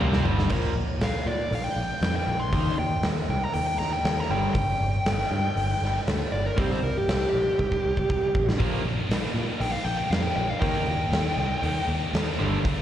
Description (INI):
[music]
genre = hard rock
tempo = 119 BPM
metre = 4/4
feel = straight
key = unclear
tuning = A4 = 440 Hz
[part]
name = crunchy overdriven guitar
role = riff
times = 0.0-12.6 s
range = G2 to Eb4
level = -33 LUFS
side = right 9 dB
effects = spring reverb, slapback echo
[part]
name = overdriven semi-hollow guitar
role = riff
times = 0.0-12.6 s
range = G2 to Eb4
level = -33 LUFS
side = left 9 dB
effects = slapback echo
[part]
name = scooped high-gain guitar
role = riff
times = 0.0-0.5, 8.6-12.8 s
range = G2 to Eb4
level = -33 LUFS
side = equal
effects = distortion
[part]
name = picked electric bass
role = bass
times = 0.0-12.8 s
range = G1 to Bb2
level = -28 LUFS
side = equal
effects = none
[part]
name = huge arena drum kit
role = drums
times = 0.0-12.8 s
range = crash cymbal, hi-hat, kick drum, snare drum, toms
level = -28 LUFS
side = equal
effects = none
[part]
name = dark smooth lead guitar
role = melody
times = 1.0-11.9 s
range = G4 to C6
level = -28 LUFS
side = equal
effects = overdrive, slapback echo, analog delay
[sound]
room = light reverb, small room ambience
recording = live gig heard through the venue's PA, cassette tape, recital hall reverb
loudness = -23 LUFS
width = side -11 dB against mid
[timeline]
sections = 0.5-12.8 A section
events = drum fill 0.0-0.5, 7.6-8.6; lead electric guitar solo 0.5-12.8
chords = 0.0 G5; 0.5 Bb5; 2.5 Eb5; 4.3 G5; 6.6 C5; 8.6 Bb; 10.6 Eb